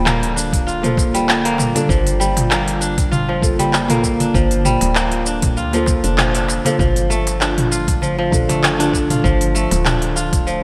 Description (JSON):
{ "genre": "organic downtempo", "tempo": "98 BPM", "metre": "4/4", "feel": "swing 55% on 16ths", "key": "unclear", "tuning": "A4 = 440 Hz", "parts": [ { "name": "felt-muted upright piano", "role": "accompaniment", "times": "0.0-10.6 s", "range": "Bb3 to A4", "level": "-25 LUFS", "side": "equal", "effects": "subtle chorus, sidechain pumping, digital delay" }, { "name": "warbly tape-like pad", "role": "sustained chords", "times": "0.0-10.6 s", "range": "D3 to F4", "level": "-28 LUFS", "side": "equal", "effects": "chorus, built-in reverb, sidechain pumping" }, { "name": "kora", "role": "arpeggios", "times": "0.0-10.6 s", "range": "F3 to F4", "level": "-23 LUFS", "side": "equal", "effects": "digital delay" }, { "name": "woody FM bass", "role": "bass", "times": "0.0-10.6 s", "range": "D1 to D2", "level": "-25 LUFS", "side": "equal", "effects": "sidechain pumping" }, { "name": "organic electronic drum kit", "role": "drums", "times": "0.1-10.6 s", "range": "handclaps, hi-hat, shaker, toms", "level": "-22 LUFS", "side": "equal", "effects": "gated reverb" }, { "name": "electronic kick drum", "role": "drums", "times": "0.5-10.4 s", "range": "none", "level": "-22 LUFS", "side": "equal", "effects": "none" }, { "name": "darbuka", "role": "percussion", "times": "0.5-10.4 s", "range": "none", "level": "-29 LUFS", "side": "equal", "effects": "none" } ], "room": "moderate lush hall reverb, RT60 2.7 s", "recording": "bright 1980s-style digital production", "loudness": "-17 LUFS", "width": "mono", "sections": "0.0-10.6 A section", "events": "none", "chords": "0.0 Dm", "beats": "0.06 0.67 1.28 | 1.90 2.51 3.12 3.73 | 4.34 4.96 5.57 6.18 | 6.79 7.41 8.02 8.63 | 9.24 9.86 10.47" }